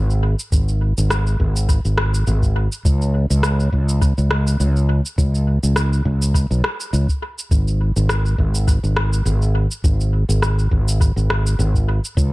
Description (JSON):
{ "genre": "sunset chillout", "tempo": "103 BPM", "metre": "4/4", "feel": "swing 55% on 16ths", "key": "unclear", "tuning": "A4 = 439 Hz", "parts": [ { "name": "fretless electric bass", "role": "bass", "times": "0.0-12.3 s", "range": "G#1 to C#2", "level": "-16 LUFS", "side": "equal", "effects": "analog chorus" }, { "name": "electronic shaker and rim click", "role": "drums", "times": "0.1-12.3 s", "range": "none", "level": "-25 LUFS", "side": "equal", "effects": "small room reverb, tape echo" }, { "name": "electronic kick drum", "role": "drums", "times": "0.5-12.3 s", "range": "none", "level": "-18 LUFS", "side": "equal", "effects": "small room reverb" } ], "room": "little or no reverb", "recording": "echo-heavy mix", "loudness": "-16 LUFS", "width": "side -20 dB against mid", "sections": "0.0-12.3 A section", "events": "none", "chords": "none" }